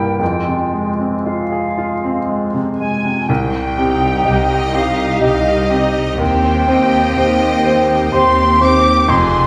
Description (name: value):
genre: classical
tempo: 57-64 BPM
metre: 3/4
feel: rubato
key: F minor, C minor from 3.3 s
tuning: A4 = 440 Hz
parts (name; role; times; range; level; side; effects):
- bright baby grand piano; melody; 0.0-9.5 s; C2 to C5; -20 LUFS; equal; none
- silver concert flute; second line; 0.0-9.5 s; Eb5 to D6; -20 LUFS; equal; none
- warm clarinet; second line; 0.0-2.9 s; E4 to F4; -30 LUFS; equal; none
- mellow bassoon; accompaniment; 0.0-2.9 s; Ab3; -28 LUFS; equal; none
- warm symphonic violin section; melody; 2.8-9.5 s; Eb5 to D6; -27 LUFS; equal; none
- clear chamber cello section; bass; 3.3-9.5 s; C2 to F2; -24 LUFS; equal; none
- rich chamber double bass section; bass; 3.3-9.5 s; F1 to Eb2; -24 LUFS; equal; none
- rich chamber viola section; accompaniment; 3.8-9.1 s; C4 to G4; -24 LUFS; equal; none
- clear chamber violin section; second line; 4.3-9.5 s; G4 to F5; -28 LUFS; equal; none
room: wet recital hall reverb, RT60 1.7 s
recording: recorded in a church or concert hall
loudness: -15 LUFS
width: mono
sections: 0.0-3.3 A section; 3.3-9.5 B section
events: none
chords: 0.2 Fm; 3.3 Cm; 6.2 Cm/Eb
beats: | 0.20 1.25 2.28 | 3.29 4.27 5.22 | 6.20 7.17 8.13 | 9.09